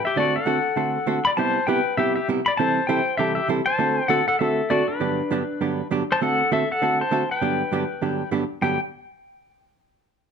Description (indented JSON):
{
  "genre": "country",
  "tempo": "199 BPM",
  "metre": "4/4",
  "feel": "swing 61% on 8ths",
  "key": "G major",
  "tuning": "A4 = 439 Hz",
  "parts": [
    { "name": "pedal steel guitar", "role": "melody", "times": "0.0-8.8 s", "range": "D4 to B5", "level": "-22 LUFS", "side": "left 3 dB", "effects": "plate reverb" },
    { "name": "hollow-body jazz guitar", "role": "accompaniment", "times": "0.2-8.8 s", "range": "G2 to A4", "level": "-24 LUFS", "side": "right 4 dB", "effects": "none" }
  ],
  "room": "wet club reverb, RT60 0.6 s",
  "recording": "none",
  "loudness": "-20 LUFS",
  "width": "side -6 dB against mid",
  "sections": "0.0-6.2 A section; 6.2-8.6 B section; 8.6-9.8 C section",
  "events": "none",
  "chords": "0.2 D7; 1.4 Cmaj7; 2.6 Am7/C; 3.8 D7; 5.0 Gmaj7; 6.2 D7; 7.4 Gmaj7",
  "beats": "| 0.17 0.47 0.77 1.08 | 1.38 1.68 1.98 2.29 | 2.59 2.89 3.19 3.49 | 3.79 4.10 4.40 4.70 | 5.00 5.30 5.60 5.91 | 6.21 6.51 6.81 7.11 | 7.41 7.71 8.02 8.32 | 8.62"
}